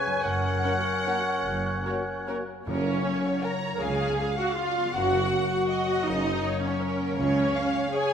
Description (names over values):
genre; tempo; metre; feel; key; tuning
classical, orchestral ballroom waltz; 140-172 BPM; 3/4; rubato; F# major; A4 = 443 Hz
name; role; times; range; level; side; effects
rich studio violin section; melody; 0.0-8.1 s; C#5 to A#5; -33 LUFS; left 2 dB; none
silver concert flute; second line; 0.0-2.5 s; F#6 to G#6; -35 LUFS; equal; none
warm clarinet; second line; 0.0-2.4 s; A#4 to B4; -35 LUFS; left 3 dB; none
warm oboe; second line; 0.0-2.4 s; C#5; -33 LUFS; right 2 dB; none
warm bassoon; accompaniment; 0.0-2.4 s; C#4; -34 LUFS; right 1 dB; none
concert harp; arpeggios; 0.0-8.1 s; F#2 to D6; -34 LUFS; left 6 dB; none
warm studio cello section; bass; 0.2-7.5 s; F#2 to C#3; -35 LUFS; right 1 dB; none
warm studio double bass section; bass; 0.2-7.5 s; F#1 to C#2; -36 LUFS; right 2 dB; none
warm studio violin section; second line; 0.6-8.1 s; A#4 to F#5; -33 LUFS; left 2 dB; none
warm studio viola section; accompaniment; 0.6-8.1 s; C#4 to A#4; -28 LUFS; right 2 dB; none
mellow French horn section; sustained chords; 0.6-2.4 s; A#3 to F#4; -38 LUFS; left 4 dB; none
warm tuba; bass; 2.7-7.5 s; F#1 to C#2; -37 LUFS; right 4 dB; none
timpani; percussion; 2.7-3.2 s; F#2; -37 LUFS; left 2 dB; none
room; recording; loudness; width
wet scoring stage reverb, RT60 2.0 s; none; -24 LUFS; side -8 dB against mid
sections
0.0-2.7 A section; 2.7-8.1 B section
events
none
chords
0.2 F#; 3.8 C#7b9; 4.9 F#; 7.2 C#